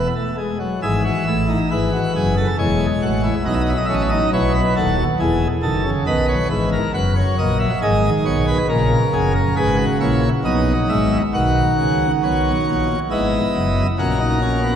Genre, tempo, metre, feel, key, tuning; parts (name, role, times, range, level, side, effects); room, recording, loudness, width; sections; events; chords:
classical, baroque-style 4-part fugue for pipe organ; 68 BPM; 3/4; straight; E major; A4 = 441 Hz
pipe organ, plenum; solo; 0.0-14.8 s; D#1 to F#5; -16 LUFS; equal
wet church reverb, RT60 2.9 s; dark, warm production; -16 LUFS; side -8 dB against mid
0.8-11.4 A section; 11.4-14.8 B section
0.0 E (rootless); 0.8 E/G#; 2.6 A/E; 3.5 B7; 5.2 E; 6.1 B; 7.8 G#madd11; 8.7 F#7; 10.5 B; 13.1 Emaj7/G#; 14.0 A#m